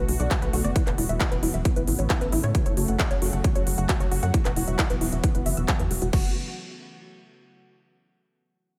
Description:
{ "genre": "uplifting trance", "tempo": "134 BPM", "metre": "4/4", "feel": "straight", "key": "F# minor", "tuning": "A4 = 440 Hz", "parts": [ { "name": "lush unison pad", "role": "sustained chords", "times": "0.0-6.3 s", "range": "C#3 to F#4", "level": "-34 LUFS", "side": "equal", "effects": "chorus, sidechain pumping" }, { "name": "tight sequenced synth", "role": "arpeggios", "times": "0.0-6.3 s", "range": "E4 to E6", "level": "-34 LUFS", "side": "equal", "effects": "chorus, sidechain pumping, digital delay" }, { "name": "tight sequencer bass", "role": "bass", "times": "0.0-6.3 s", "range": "E1 to A2", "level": "-29 LUFS", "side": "equal", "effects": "sidechain pumping" }, { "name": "big-room dance drum kit", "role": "drums", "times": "0.1-6.2 s", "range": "crash cymbal, handclaps, hi-hat", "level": "-33 LUFS", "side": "equal", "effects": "overdrive, sidechain pumping on hats, studio reverb, sidechain pumping on cymbals" }, { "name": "electronic kick drum", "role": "drums", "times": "0.3-6.2 s", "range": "none", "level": "-27 LUFS", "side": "equal", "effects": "overdrive, studio reverb" } ], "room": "little or no reverb", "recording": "none", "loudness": "-24 LUFS", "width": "mono", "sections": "0.0-6.1 A section; 6.1-7.9 B section", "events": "none", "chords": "0.0 Bm7; 0.8 Esus2; 1.7 Aadd9; 2.5 F#m; 4.3 Esus2; 6.1 F#m" }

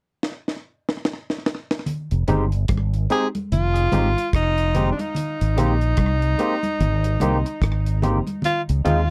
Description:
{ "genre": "lovers rock reggae", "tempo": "73 BPM", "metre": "4/4", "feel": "swing 60% on 16ths", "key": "unclear", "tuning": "A4 = 438 Hz", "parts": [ { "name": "deep reggae drum kit", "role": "drums", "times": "0.2-9.1 s", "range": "hi-hat, kick drum, rim click, snare drum", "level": "-27 LUFS", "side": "equal", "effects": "slapback echo" }, { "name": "congas", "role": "percussion", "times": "1.9-9.1 s", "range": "none", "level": "-31 LUFS", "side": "equal", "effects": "none" }, { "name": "fretless electric bass", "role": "bass", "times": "2.1-9.1 s", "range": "F1 to Eb2", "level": "-23 LUFS", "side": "equal", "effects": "ensemble chorus" }, { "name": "barky tine electric piano", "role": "accompaniment", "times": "2.3-9.0 s", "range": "Ab3 to G4", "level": "-26 LUFS", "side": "equal", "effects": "overdrive, lush chorus" }, { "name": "electric guitar through a small old amp", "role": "stabs", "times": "2.3-9.0 s", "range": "Ab3 to C5", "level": "-30 LUFS", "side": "equal", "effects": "ensemble chorus" }, { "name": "clear tenor saxophone", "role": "melody", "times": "3.1-9.1 s", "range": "D4 to Ab4", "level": "-26 LUFS", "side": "equal", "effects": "tape echo" } ], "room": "little or no reverb", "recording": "dry, close 1970s-style studio recording", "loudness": "-22 LUFS", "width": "mono", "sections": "0.0-1.9 A section; 1.9-9.1 B section", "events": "drum fill 0.2-1.9", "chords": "0.0 N.C.; 1.9 Fm7; 5.2 Abmaj7; 8.4 Dbmaj7" }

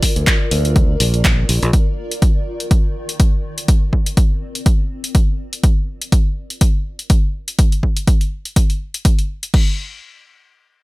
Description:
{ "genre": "piano house", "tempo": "123 BPM", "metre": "4/4", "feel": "swing 56% on 16ths", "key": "unclear", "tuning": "A4 = 439 Hz", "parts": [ { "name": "electronic kick drum", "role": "drums", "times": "0.0-9.6 s", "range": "none", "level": "-14 LUFS", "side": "equal", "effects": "overdrive" }, { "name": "punchy analog drum machine", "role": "drums", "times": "0.0-9.6 s", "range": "crash cymbal, handclaps, hi-hat", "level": "-22 LUFS", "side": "left 1 dB", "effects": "none" }, { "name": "granular cloud pad", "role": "texture", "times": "0.0-5.6 s", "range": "Eb3 to D5", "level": "-28 LUFS", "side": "equal", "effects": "built-in reverb, sidechain pumping" }, { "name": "fingered electric bass", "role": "bass", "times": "0.2-1.7 s", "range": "Bb1 to D2", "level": "-17 LUFS", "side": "equal", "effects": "tube saturation, sidechain pumping" } ], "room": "digital ambience", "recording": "none", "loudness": "-14 LUFS", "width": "side -22 dB against mid", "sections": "0.0-9.5 A section; 9.5-10.8 B section", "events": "fade-out on ambient pad 0.0-5.6", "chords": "0.0 Bb; 1.7 Eb5; 3.4 C9sus4; 5.6 N.C." }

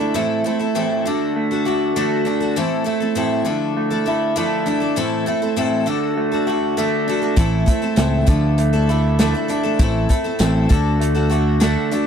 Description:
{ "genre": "folk rock and heartland rock", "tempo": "100 BPM", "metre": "4/4", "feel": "straight", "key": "unclear", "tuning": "A4 = 440 Hz", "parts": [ { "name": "picked twelve-string acoustic guitar", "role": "accompaniment", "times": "0.0-12.1 s", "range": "A2 to A4", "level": "-22 LUFS", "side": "left 3 dB", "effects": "none" }, { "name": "electric guitar through a small old amp", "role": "riff", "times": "0.0-12.1 s", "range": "A2 to F#4", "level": "-20 LUFS", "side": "right 2 dB", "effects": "none" }, { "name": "fingered electric bass", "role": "bass", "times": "7.4-11.8 s", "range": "A1 to D2", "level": "-18 LUFS", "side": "equal", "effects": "none" }, { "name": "vintage drum kit", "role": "drums", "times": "7.4-12.1 s", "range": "hi-hat, kick drum, snare drum", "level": "-17 LUFS", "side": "equal", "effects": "none" } ], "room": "little or no reverb", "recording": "dry, close 1970s-style studio recording", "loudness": "-16 LUFS", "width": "side -8 dB against mid", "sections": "0.0-12.1 A section", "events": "none", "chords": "0.1 Am; 1.1 D; 2.6 Am; 3.5 Dmadd9; 5.0 Am; 5.9 D; 7.4 Am; 8.3 Dmadd9; 9.8 Am; 10.7 D" }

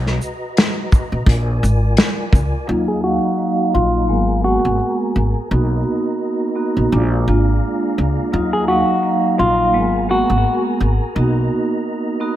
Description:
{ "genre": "hip hop, boom-bap hip-hop", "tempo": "85 BPM", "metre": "4/4", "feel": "swing 56% on 16ths", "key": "Eb harmonic minor", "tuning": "A4 = 441 Hz", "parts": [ { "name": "mellow tonewheel organ", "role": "sustained chords", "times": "0.0-12.4 s", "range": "Gb3 to Bb5", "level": "-28 LUFS", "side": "left 1 dB", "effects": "chorus vibrato, stopped rotary speaker, high-pass filter, low-pass filter" }, { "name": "upright bass", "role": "bass", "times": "0.0-11.5 s", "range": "Ab1 to Eb2", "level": "-18 LUFS", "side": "equal", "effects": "none" }, { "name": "warm soul drum kit", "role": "drums", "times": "0.1-2.5 s", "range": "hi-hat, kick drum, shaker, snare drum", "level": "-15 LUFS", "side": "equal", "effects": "none" }, { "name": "vibraphone with soft mallets", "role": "accompaniment", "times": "2.7-12.4 s", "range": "Gb3 to F5", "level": "-19 LUFS", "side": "right 2 dB", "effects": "cassette tape, high-pass filter, low-pass filter" }, { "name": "semi-hollow electric guitar", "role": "melody", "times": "2.9-10.6 s", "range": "F4 to Ab4", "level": "-19 LUFS", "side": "left 1 dB", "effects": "spring reverb, high-pass filter, low-pass filter, ping-pong delay" } ], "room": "light reverb, small room ambience", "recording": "none", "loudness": "-15 LUFS", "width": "side -12 dB against mid", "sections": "0.0-2.7 A section; 2.7-12.4 B section", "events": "break 0.0-2.7; filter sweep 2.7-12.4", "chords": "0.0 Bmaj7; 1.3 Bb7; 2.7 Ebmadd9; 4.1 Abm9; 5.5 Bmaj7; 6.9 Bb7; 8.3 Ebmadd9; 9.7 Abm9; 11.2 Bmaj7" }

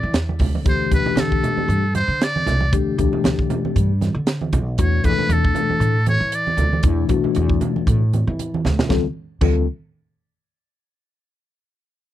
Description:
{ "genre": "electric jazz fusion", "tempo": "116 BPM", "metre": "4/4", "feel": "swing 56% on 16ths", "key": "unclear", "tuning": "A4 = 439 Hz", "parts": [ { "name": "trumpet with metal mute", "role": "melody", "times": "0.0-6.9 s", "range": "A4 to D5", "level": "-23 LUFS", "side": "right 1 dB", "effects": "none" }, { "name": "upright bass", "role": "bass", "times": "0.0-9.7 s", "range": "B1 to E3", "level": "-21 LUFS", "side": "right 1 dB", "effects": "none" }, { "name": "crisp fusion drum kit", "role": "drums", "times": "0.1-9.5 s", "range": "crash cymbal, hi-hat, kick drum, snare drum", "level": "-21 LUFS", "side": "right 1 dB", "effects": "none" }, { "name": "congas", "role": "percussion", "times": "0.3-9.7 s", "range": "none", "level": "-26 LUFS", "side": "right 5 dB", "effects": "none" }, { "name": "mellow tine electric piano", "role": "accompaniment", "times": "0.6-9.7 s", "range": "B2 to A4", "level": "-22 LUFS", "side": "left 9 dB", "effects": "medium stereo tremolo, wide subtle chorus" } ], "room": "little or no reverb", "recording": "dry, close 1970s-style studio recording", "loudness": "-17 LUFS", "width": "side -13 dB against mid", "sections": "0.0-8.9 A section; 8.9-11.0 B section", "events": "muted trumpet solo 0.0-8.9; drum fill 8.3-8.9", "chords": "0.0 E7(no3); 0.7 Dsus4; 4.8 E9sus4; 8.9 Dm" }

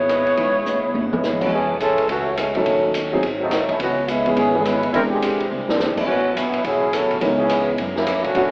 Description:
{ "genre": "jazz, big band swing", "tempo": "211 BPM", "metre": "4/4", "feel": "swing 62% on 8ths", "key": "F# minor", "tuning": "A4 = 441 Hz", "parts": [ { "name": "dark saxophone section", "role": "melody", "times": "0.0-1.2 s", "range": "B3 to C#5", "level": "-19 LUFS", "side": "equal", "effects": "none" }, { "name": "upright bass", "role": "bass", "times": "0.0-8.5 s", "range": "E1 to G#2", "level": "-33 LUFS", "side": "equal", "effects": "none" }, { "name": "picked swing-style acoustic guitar", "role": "accompaniment", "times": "0.1-8.5 s", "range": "F#2 to C#5", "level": "-27 LUFS", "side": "equal", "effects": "none" }, { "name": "open jazz drum kit", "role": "drums", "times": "0.1-8.4 s", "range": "crash cymbal, hi-hat, kick drum, ride cymbal, rim click, snare drum, toms", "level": "-26 LUFS", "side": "equal", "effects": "none" }, { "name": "warm baby grand piano", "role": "accompaniment", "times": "0.4-8.5 s", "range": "F#2 to G5", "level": "-22 LUFS", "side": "equal", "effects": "none" }, { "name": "mellow trombone section", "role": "second line", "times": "1.1-8.5 s", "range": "D3 to B4", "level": "-20 LUFS", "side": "equal", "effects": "none" } ], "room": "wet recital hall reverb, RT60 1.6 s", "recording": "recorded in a church or concert hall, AM radio sound", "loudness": "-17 LUFS", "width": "side -36 dB against mid", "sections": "0.0-1.5 A section; 1.5-8.5 B section", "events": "drum fill 0.7-1.2, 5.5; trombone section solo 1.5-8.5", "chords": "0.0 C#m7; 1.5 F#m9; 2.7 D#m7b5; 3.2 G#7b9; 3.8 C#m7; 4.9 E7alt; 6.1 A69; 7.2 C#m7; 7.8 F#7b13" }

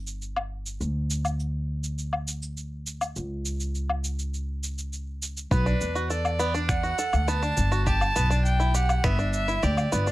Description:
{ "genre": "folktronica", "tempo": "102 BPM", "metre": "4/4", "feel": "straight", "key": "unclear", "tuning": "A4 = 440 Hz", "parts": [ { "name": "upright bass", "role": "bass", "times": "0.0-10.1 s", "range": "G1 to E2", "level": "-27 LUFS", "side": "equal", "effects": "none" }, { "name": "electronic cabasa, woodblock and finger snaps", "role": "drums", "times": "0.1-10.1 s", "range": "none", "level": "-31 LUFS", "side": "left 1 dB", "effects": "overdrive" }, { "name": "warm violin", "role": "melody", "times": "5.5-10.1 s", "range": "B4 to A5", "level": "-29 LUFS", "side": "right 1 dB", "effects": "plate reverb" }, { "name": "bluegrass banjo", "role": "arpeggios", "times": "5.5-10.1 s", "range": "B3 to A4", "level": "-30 LUFS", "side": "equal", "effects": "plate reverb, ping-pong delay" }, { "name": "electronic kick drum", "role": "drums", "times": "5.5-9.2 s", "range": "none", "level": "-28 LUFS", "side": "equal", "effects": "overdrive" } ], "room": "little or no reverb", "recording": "none", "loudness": "-24 LUFS", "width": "side -17 dB against mid", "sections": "0.0-5.5 A section; 5.5-10.1 B section", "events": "none", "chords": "0.0 N.C.; 5.5 Bm7; 7.9 G6" }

